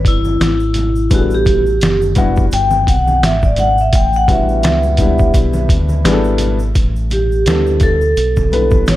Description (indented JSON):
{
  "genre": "hip hop, jazz-hop",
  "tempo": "85 BPM",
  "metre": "4/4",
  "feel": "swing 57% on 16ths",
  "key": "A mixolydian",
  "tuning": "A4 = 441 Hz",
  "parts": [
    { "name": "vibraphone with soft mallets", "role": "melody", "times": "0.0-9.0 s", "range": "E4 to G5", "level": "-16 LUFS", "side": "equal", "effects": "tape echo" },
    { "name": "deep dub fingered electric bass", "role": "bass", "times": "0.0-9.0 s", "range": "F#1 to D2", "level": "-17 LUFS", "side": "equal", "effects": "none" },
    { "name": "trip hop sampler-style drum kit", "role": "drums", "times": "0.0-9.0 s", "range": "hi-hat, kick drum, snare drum", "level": "-15 LUFS", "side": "equal", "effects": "none" },
    { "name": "congas and tube shaker", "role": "percussion", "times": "0.1-9.0 s", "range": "none", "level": "-27 LUFS", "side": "right 1 dB", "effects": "none" },
    { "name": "dark upright piano", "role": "accompaniment", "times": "1.1-9.0 s", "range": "G3 to B4", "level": "-19 LUFS", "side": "left 3 dB", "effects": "none" }
  ],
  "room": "light reverb, studio ambience",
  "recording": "none",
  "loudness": "-11 LUFS",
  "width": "side -15 dB against mid",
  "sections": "0.0-6.8 A section; 6.8-9.0 B section",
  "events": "vibraphone solo 0.0-6.8",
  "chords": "0.0 A9sus4"
}